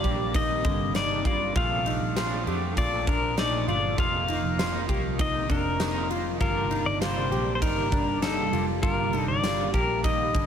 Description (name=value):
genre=dream pop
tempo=99 BPM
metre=4/4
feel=straight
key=unclear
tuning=A4 = 440 Hz
part: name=pedal steel guitar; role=melody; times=0.0-10.5 s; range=A4 to F5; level=-28 LUFS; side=left 3 dB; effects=ping-pong delay
part: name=electric guitar at the edge of break-up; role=accompaniment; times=0.0-10.5 s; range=F2 to Eb4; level=-33 LUFS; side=right 4 dB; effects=tremolo, analog chorus
part: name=ethereal airy pad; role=sustained chords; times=0.0-10.5 s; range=Bb2 to D5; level=-33 LUFS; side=right 2 dB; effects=ensemble chorus, built-in reverb, phaser
part: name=mellow electric guitar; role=arpeggios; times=0.0-10.5 s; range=D3 to G4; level=-32 LUFS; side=left 2 dB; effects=analog chorus, ping-pong delay
part: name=vintage muted picked electric bass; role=bass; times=0.0-10.5 s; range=F1 to F2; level=-32 LUFS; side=equal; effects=none
part: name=huge arena drum kit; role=drums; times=0.0-10.5 s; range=kick drum, ride cymbal, snare drum, tambourine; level=-30 LUFS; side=equal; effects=none
room=light reverb, small room ambience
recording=none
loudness=-23 LUFS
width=side -8 dB against mid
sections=0.0-10.5 A section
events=none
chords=0.0 F7sus4; 1.6 Bbmaj7; 4.0 F7sus4